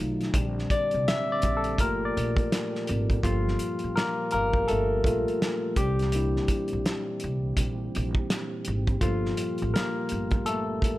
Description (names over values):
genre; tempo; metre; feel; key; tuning
R&B, neo-soul; 83 BPM; 4/4; swing 62% on 16ths; G dorian; A4 = 440 Hz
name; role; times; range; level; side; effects
barky tine electric piano; accompaniment; 0.0-11.0 s; F3 to E5; -28 LUFS; left 2 dB; overdrive, phaser
percussive tonewheel organ; sustained chords; 0.0-11.0 s; Bb2 to A4; -36 LUFS; right 4 dB; slow rotary speaker, chorus vibrato
upright bass; bass; 0.0-11.0 s; G1 to C2; -30 LUFS; equal; none
cloth-damped thuddy drum kit; drums; 0.2-11.0 s; hi-hat, kick drum, snare drum; -28 LUFS; equal; none
room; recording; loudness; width
light reverb, small room ambience; none; -24 LUFS; side -16 dB against mid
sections
0.0-3.2 A section; 3.2-11.0 B section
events
tine electric piano solo 0.0-3.2, 3.2-11.0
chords
0.3 Bb69; 1.8 Gm9; 5.8 C7; 9.0 Gm9